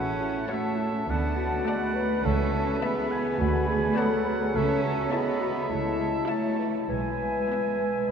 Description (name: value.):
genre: quick classical-period movement for symphony orchestra.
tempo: 104 BPM.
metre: 4/4.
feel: straight.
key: A major, E major from 4.5 s.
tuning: A4 = 441 Hz.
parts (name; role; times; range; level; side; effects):
bright large flute ensemble; second line; 0.0-8.1 s; G#5 to B5; -35 LUFS; right 1 dB; none.
clear clarinet; second line; 0.0-8.1 s; A4 to E5; -37 LUFS; right 1 dB; none.
clear oboe; second line; 0.0-8.1 s; E5 to A5; -35 LUFS; right 1 dB; none.
mellow bassoon; accompaniment; 0.0-8.1 s; D3 to A3; -36 LUFS; right 2 dB; none.
mellow French horn section; sustained chords; 0.0-8.1 s; C#4 to B4; -29 LUFS; left 4 dB; none.
clear chamber double bass section; bass; 0.0-7.4 s; A1 to D2; -32 LUFS; right 3 dB; none.
rich chamber cello section; bass; 0.0-8.1 s; G#3 to C#4; -31 LUFS; right 3 dB; none.
rich symphonic violin section; melody; 0.5-7.9 s; G#5 to A5; -45 LUFS; left 4 dB; none.
rich chamber violin section; second line; 0.5-7.9 s; C#5 to E5; -44 LUFS; left 3 dB; none.
rich chamber viola section; accompaniment; 0.5-7.9 s; A3 to E4; -40 LUFS; right 1 dB; none.
room: wet cathedral reverb, RT60 5.2 s.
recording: none.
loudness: -24 LUFS.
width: side -7 dB against mid.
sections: 0.0-8.1 A section.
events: none.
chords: 0.0 A; 1.1 D; 2.2 A/C#; 3.4 Bm7/D; 4.5 A/C#; 6.9 E/B.